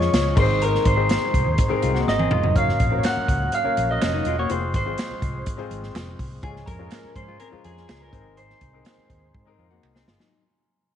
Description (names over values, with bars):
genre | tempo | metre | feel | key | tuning
uptempo 1960s-style soul | 124 BPM | 4/4 | straight | unclear | A4 = 439 Hz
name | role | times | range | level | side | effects
electric guitar through a small old amp | melody | 0.0-9.8 s | Ab4 to Gb5 | -26 LUFS | right 2 dB | lush chorus
glockenspiel with soft plastic mallets | second line | 0.0-9.8 s | Ab5 to Gb6 | -31 LUFS | equal | none
warm baby grand piano | accompaniment | 0.0-10.1 s | Ab3 to Eb5 | -30 LUFS | left 9 dB | none
overdriven tonewheel organ | sustained chords | 0.0-10.3 s | Eb3 to Db4 | -34 LUFS | right 2 dB | chorus vibrato, slow rotary speaker
vintage hollow-body jazz guitar | riff | 0.0-10.4 s | F3 to Ab4 | -31 LUFS | left 8 dB | none
vintage muted fingered electric bass | bass | 0.0-10.2 s | Fb1 to Ab2 | -26 LUFS | equal | none
swinging big-band drum kit | drums | 0.0-10.3 s | crash cymbal, hi-hat, kick drum, snare drum, toms | -24 LUFS | equal | none
finger snaps | percussion | 3.0-9.9 s | none | -40 LUFS | right 9 dB | none
room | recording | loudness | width
light reverb, small room ambience | 1960s-style stereo with parts hard left and right, vinyl crackle, nothing above 10.8 kHz | -19 LUFS | side -9 dB against mid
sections
0.0-10.3 A section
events
fade-out 0.0-10.3; drum fill 2.1-2.6, 9.3-10.3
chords
0.4 Ab; 2.6 Gb; 4.5 Fm; 6.4 Db; 8.1 Ab